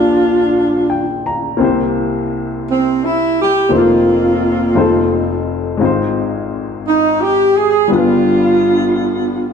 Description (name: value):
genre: gospel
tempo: 57 BPM (dotted quarters)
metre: 6/8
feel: straight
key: unclear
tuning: A4 = 440 Hz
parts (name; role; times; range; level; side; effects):
- mellow saxophone section; melody; 0.0-9.5 s; Bb3 to Ab4; -13 LUFS; right 1 dB; none
- warm upright piano; accompaniment; 0.0-9.5 s; F1 to Bb5; -17 LUFS; left 4 dB; none
room: wet large studio reverb, RT60 1.4 s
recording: dark, warm production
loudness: -12 LUFS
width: side -6 dB against mid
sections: 0.0-9.5 A section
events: upright piano fill 0.6-1.6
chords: 0.0 Gm7/Bb; 1.6 C7; 3.7 F7sus4; 4.8 F7; 5.8 Ab6; 7.9 G7